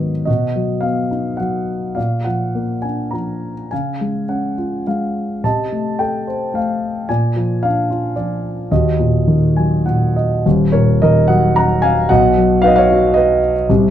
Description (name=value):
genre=classical, lyrical solo piano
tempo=99-114 BPM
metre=3/4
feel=rubato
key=Eb minor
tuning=A4 = 441 Hz
part: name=dark concert grand piano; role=solo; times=0.0-13.9 s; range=Eb1 to Bb5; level=-14 LUFS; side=equal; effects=none
room=moderate small room reverb, RT60 0.5 s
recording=dark, warm production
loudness=-14 LUFS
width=side -10 dB against mid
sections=0.0-10.5 A section; 10.5-13.9 B section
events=grand piano fill 9.3-10.5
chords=0.3 B; 2.0 Bb; 3.7 Db; 5.4 F7/C; 7.1 Bb7; 8.7 Ebm; 12.1 B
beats=| 0.28 0.83 1.39 | 1.97 2.54 3.12 | 3.71 4.29 4.87 | 5.43 5.99 6.54 | 7.09 7.63 8.16 | 8.71 9.27 9.86 | 10.45 11.01 11.56 | 12.10 12.63 13.16 | 13.69